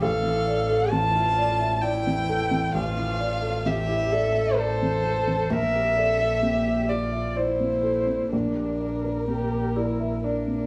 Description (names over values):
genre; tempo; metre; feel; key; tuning
neoclassical piano and strings; 65 BPM; 3/4; uneven beats, rubato; D minor; A4 = 440 Hz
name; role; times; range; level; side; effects
dark violin; melody; 0.0-10.7 s; A4 to A5; -28 LUFS; equal; plate reverb
dark baby grand piano; accompaniment; 0.0-10.7 s; A1 to E5; -30 LUFS; equal; none
warm viola; accompaniment; 0.0-10.7 s; D4 to C5; -32 LUFS; equal; plate reverb
dark double bass; bass; 0.0-10.7 s; A1 to Bb1; -33 LUFS; equal; none
room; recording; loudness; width
wet studio reverb, RT60 0.6 s; studio reverb; -24 LUFS; mono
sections
0.0-10.7 A section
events
none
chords
0.0 Dmadd9/A; 5.5 Gmadd9/Bb